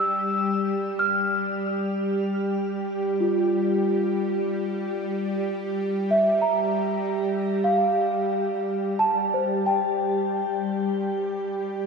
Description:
ambient; free time; G dorian; A4 = 440 Hz
celesta; arpeggios; 0.0-11.9 s; F4 to F6; -25 LUFS; right 1 dB; ping-pong delay, shimmer reverb
bowed-like drone; drone; 0.0-11.9 s; G3 to G4; -25 LUFS; equal; built-in reverb
wet scoring stage reverb, RT60 1.8 s; dark, warm production; -22 LUFS; side -5 dB against mid
0.0-11.9 A section
0.0 Gm7; 8.1 Am7

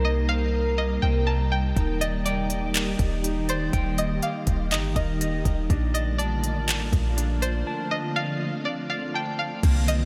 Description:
hip hop, atmospheric cloud-rap; 122 BPM; 4/4; half-time; A4 = 438 Hz
string-like resonator pluck; melody; 0.0-10.1 s; C5 to A5; -33 LUFS; equal; chorus, phaser, low-pass filter, diffuse ambient delay
glassy FM pad; sustained chords; 0.0-10.1 s; C3 to Bb4; -32 LUFS; equal; ensemble chorus, built-in reverb, sidechain pumping
clean electric guitar; arpeggios; 0.0-10.1 s; Bb3 to D6; -36 LUFS; equal; low-pass filter, diffuse ambient delay
clean 808-style bass; bass; 0.0-10.1 s; Eb1 to C2; -28 LUFS; equal
smooth R&B drum kit; drums; 1.8-10.0 s; crash cymbal, handclaps, hi-hat, kick drum; -29 LUFS; equal; overdrive
moderate huge ambient reverb, RT60 4.9 s; dreamy mix soaked in reverb; -25 LUFS; mono
0.0-9.6 A section
0.0 Cm7; 1.8 Ebmaj7; 5.7 Bbmaj7

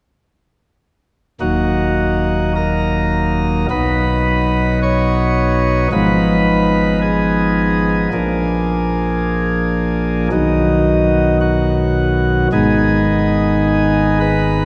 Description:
classical, chorale-style piece for pipe organ; 54 BPM; 4/4; rubato; Eb minor; A4 = 440 Hz
chamber organ, principal chorus; solo; 1.4-14.7 s; Eb1 to Db5; -16 LUFS; equal
wet church reverb, RT60 3.3 s; -16 LUFS; mono
1.4-14.7 A section
1.4 Ebm; 3.7 B; 5.9 Fm7b5/Ab; 8.1 Bb7; 10.3 B; 12.5 Abm

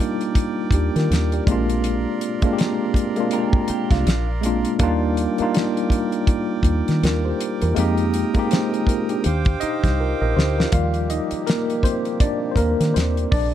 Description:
R&B, neo-soul; 81 BPM; 4/4; swing 59% on 16ths; Eb major; A4 = 440 Hz
mellow tine electric piano; accompaniment; 0.0-13.5 s; F3 to F5; -22 LUFS; left 1 dB; medium stereo tremolo
accordion; sustained chords; 0.0-13.5 s; C3 to Eb6; -32 LUFS; right 5 dB
damped 70s drum kit; drums; 0.0-13.5 s; hi-hat, kick drum, snare drum; -21 LUFS; equal
deep dub fingered electric bass; bass; 0.7-13.5 s; Bb1 to Eb3; -22 LUFS; equal
electric guitar through a small old amp; second line; 3.3-4.3 s; D4 to Bb4; -30 LUFS; right 4 dB; analog chorus
small room ambience; dark, warm production; -18 LUFS; side -11 dB against mid
0.0-10.7 A section; 10.7-13.5 A section
drum fill 10.0-10.7; tine electric piano solo 10.7-13.5
0.0 Ebmaj7; 1.5 Bb9; 4.8 Ebmaj7; 7.8 Fm11; 9.2 Ebmaj13; 10.7 Ebmaj7

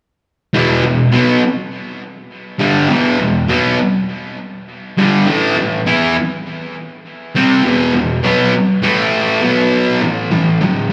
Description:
rock; 101 BPM; 4/4; straight; A4 = 440 Hz
fuzz guitar; solo; 0.5-10.9 s; E2 to E4; -15 LUFS; equal; distortion, slapback echo, tape echo
moderate lush hall reverb, RT60 2.3 s; live gig heard through the venue's PA, club reverb; -14 LUFS; mono
0.5-10.0 A section
0.5 E5; 5.3 A5; 7.6 E5; 8.8 A5; 9.4 B5; 10.0 A5

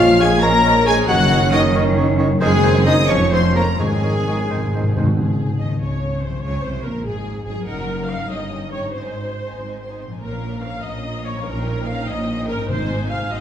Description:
classical; 85-99 BPM (dotted quarters); 6/8; rubato; Db major; A4 = 440 Hz
warm symphonic violin section; melody; 0.0-13.4 s; Ab4 to Bb6; -28 LUFS; left 2 dB
clear clarinet; second line; 0.0-4.9 s; Ab4 to Bb5; -25 LUFS; left 1 dB
mellow flute section; second line; 0.0-5.0 s; Ab4 to Bb5; -27 LUFS; left 2 dB
warm oboe; second line; 0.0-5.1 s; C5 to Db5; -31 LUFS; right 1 dB
warm symphonic violin section; second line; 0.0-13.4 s; Bb3 to Bb5; -30 LUFS; left 2 dB
clear bassoon; accompaniment; 0.0-5.1 s; Eb3 to Ab3; -27 LUFS; right 2 dB
rich symphonic viola section; accompaniment; 0.0-13.4 s; Ab3 to F5; -26 LUFS; equal
mellow French horn section; sustained chords; 0.0-5.0 s; Ab3 to Bb4; -24 LUFS; left 3 dB
mellow trombone section; sustained chords; 0.0-5.0 s; Eb3 to Db4; -25 LUFS; right 4 dB
concert harp; arpeggios; 0.0-13.4 s; F2 to Ab5; -26 LUFS; left 4 dB
warm trumpet section; stabs; 0.0-4.9 s; Ab4 to Bb5; -24 LUFS; equal
rich studio double bass section; bass; 0.0-13.4 s; F1 to Eb2; -25 LUFS; right 2 dB
rich symphonic cello section; bass; 0.0-13.4 s; F2 to Eb3; -25 LUFS; right 1 dB
timpani; percussion; 3.8-5.8, 12.7-13.3 s; Ab2 to Db3; -22 LUFS; equal
wet recital hall reverb, RT60 1.6 s; recorded in a church or concert hall; -16 LUFS; side -9 dB against mid
0.0-5.2 A section; 5.2-13.4 B section
timpani fill 4.5-5.2
0.0 Bbm7; 1.1 Ebm7/Gb; 2.4 Ab7/Gb; 3.1 Db/F; 3.8 Absus4; 4.5 Ab; 5.2 Db/Ab; 6.4 Db; 7.7 Ebm/Gb; 8.3 Eb7/G; 8.9 Ab; 10.2 Bbm; 11.5 Eb7/Bb; 12.7 Ab

